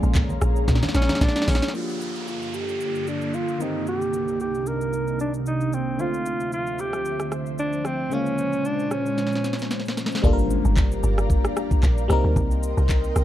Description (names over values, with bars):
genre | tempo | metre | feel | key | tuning
amapiano | 113 BPM | 4/4 | swing 55% on 16ths | G minor | A4 = 440 Hz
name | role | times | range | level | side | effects
FM electric piano | accompaniment | 0.0-13.2 s | Db3 to Bb4 | -30 LUFS | left 3 dB | chorus, phaser, low-pass filter
ethereal airy pad | sustained chords | 0.0-13.2 s | C2 to C6 | -29 LUFS | right 1 dB | ensemble chorus, built-in reverb, low-pass filter
deep log drum bass | bass | 0.0-1.6, 10.2-13.2 s | G1 to Bb2 | -22 LUFS | equal | none
afro-pop drum kit | drums | 0.0-13.2 s | handclaps, hi-hat, kick drum, rim click, shaker, snare drum | -23 LUFS | equal | none
congas | percussion | 0.2-1.6 s | none | -30 LUFS | right 1 dB | none
breathy alto saxophone | melody | 1.0-9.7 s | C4 to Bb4 | -26 LUFS | right 1 dB | low-pass filter, tape echo
downlifter and impact | sound effects | 1.7-6.0, 10.2-12.4 s | none | -34 LUFS | right 1 dB | none
room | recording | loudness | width
little or no reverb | dark, warm production | -21 LUFS | side -12 dB against mid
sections
0.0-1.7 A section; 1.7-10.2 B section; 10.2-13.2 A section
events
drop 0.0-1.7, 10.2-13.2; drum fill 0.7-1.7, 9.2-10.2; filter sweep 1.7-10.2; impact 10.2-12.4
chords
0.0 Bbm7; 1.7 Gm7; 3.6 Cm7; 6.0 Dm7; 8.1 Bbm7; 10.2 Gm7; 12.1 Cm7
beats
0.15 0.68 1.21 | 1.74 2.27 2.81 3.34 | 3.87 4.40 4.93 5.46 | 5.99 6.52 7.05 7.58 | 8.12 8.65 9.18 9.71 | 10.24 10.77 11.30 11.83 | 12.36 12.89